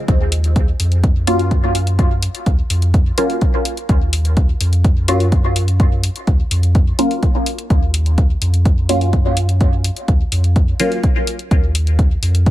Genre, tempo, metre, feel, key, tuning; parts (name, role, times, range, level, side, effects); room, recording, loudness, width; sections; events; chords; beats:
dub techno; 126 BPM; 4/4; straight; A4 = 440 Hz
round analog bass; bass; 0.1-12.5 s; Eb2 to Gb2; -16 LUFS; equal; sidechain pumping
electronic hi-hat; drums; 0.1-12.5 s; -25 LUFS; left 2 dB
electronic kick drum; drums; 0.1-12.5 s; -15 LUFS; equal
filtered dub chord stab; stabs; 1.3-11.0 s; Gb3 to F4; -21 LUFS; equal; phaser, dub echo
little or no reverb; -13 LUFS; side -15 dB against mid
0.0-12.5 A section
0.1 Ebm
| 0.08 0.56 1.04 1.51 | 1.99 2.46 2.94 3.42 | 3.89 4.37 4.84 5.32 | 5.80 6.27 6.75 7.23 | 7.70 8.18 8.65 9.13 | 9.61 10.08 10.56 11.04 | 11.51 11.99 12.46